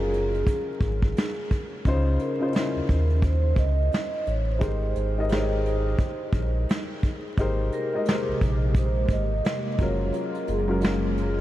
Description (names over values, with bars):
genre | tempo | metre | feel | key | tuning
lo-fi hip hop | 87 BPM | 4/4 | swing 61% on 16ths | Ab major | A4 = 440 Hz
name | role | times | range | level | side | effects
vibraphone with soft mallets | melody | 0.0-11.4 s | Ab4 to Eb5 | -32 LUFS | right 2 dB | ping-pong delay
dark upright piano | accompaniment | 0.0-11.4 s | Db3 to Eb5 | -30 LUFS | left 2 dB | none
sub bass with octave | bass | 0.0-11.4 s | Gb1 to Eb2 | -25 LUFS | equal | none
vintage brush drum kit | drums | 0.1-11.4 s | hi-hat, kick drum, snare drum | -27 LUFS | equal | none
hollow soft pad | sustained chords | 7.4-11.4 s | C3 to G4 | -31 LUFS | equal | ensemble chorus
room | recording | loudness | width
light reverb | vinyl crackle | -22 LUFS | side -14 dB against mid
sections
0.0-7.4 A section; 7.4-11.4 A section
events
none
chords
0.0 Gbmaj9; 1.9 Dbmaj9; 4.6 Abmaj9; 9.8 Gbmaj9